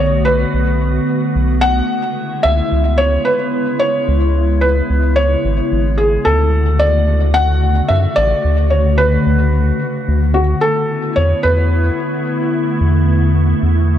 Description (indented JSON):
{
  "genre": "IDM",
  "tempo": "110 BPM",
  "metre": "4/4",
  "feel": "straight",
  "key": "unclear",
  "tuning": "A4 = 443 Hz",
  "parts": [
    { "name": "felt-muted upright piano", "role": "melody", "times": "0.0-14.0 s", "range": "F#4 to F#5", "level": "-17 LUFS", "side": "equal", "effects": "digital delay" },
    { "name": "glassy FM pad", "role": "sustained chords", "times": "0.0-14.0 s", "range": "C#3 to F#4", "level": "-18 LUFS", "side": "left 1 dB", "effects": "ensemble chorus, built-in reverb" },
    { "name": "round analog bass", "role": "bass", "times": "0.0-14.0 s", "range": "G#1 to F#2", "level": "-14 LUFS", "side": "equal", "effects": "tube saturation" }
  ],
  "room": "little or no reverb",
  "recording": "none",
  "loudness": "-12 LUFS",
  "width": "side -10 dB against mid",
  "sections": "0.0-14.0 A section",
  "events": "none",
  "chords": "0.0 Bm7; 1.9 C#m7; 6.3 Dmaj7; 10.6 E7sus4",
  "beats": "0.26 0.81 1.35 | 1.90 2.45 2.99 3.54 | 4.08 4.63 5.17 5.72 | 6.26 6.81 7.36 7.90 | 8.45 8.99 9.54 10.08 | 10.63 11.17 11.72 12.26 | 12.81 13.36 13.90"
}